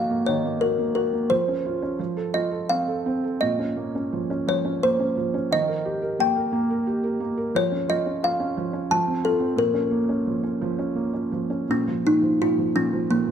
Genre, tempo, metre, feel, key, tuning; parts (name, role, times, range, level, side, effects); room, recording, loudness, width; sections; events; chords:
children's music, lullaby; 87 BPM; 3/4; uneven beats, rubato; Bb minor; A4 = 440 Hz
kalimba; melody; 0.0-13.3 s; Bb3 to A5; -24 LUFS; left 1 dB
felt-muted upright piano; accompaniment; 0.0-13.3 s; Bb2 to Bb4; -25 LUFS; right 2 dB
moderate recital hall reverb, RT60 1.5 s; dark, warm production; -21 LUFS; side -8 dB against mid
0.0-11.7 A section; 11.7-13.3 A section
0.0 Ebm; 1.3 Dbmaj7/F; 2.0 F; 3.4 Bbmadd9; 5.5 Eb; 7.5 Dbadd9/F; 8.9 F; 9.6 Bbm; 11.7 Bb5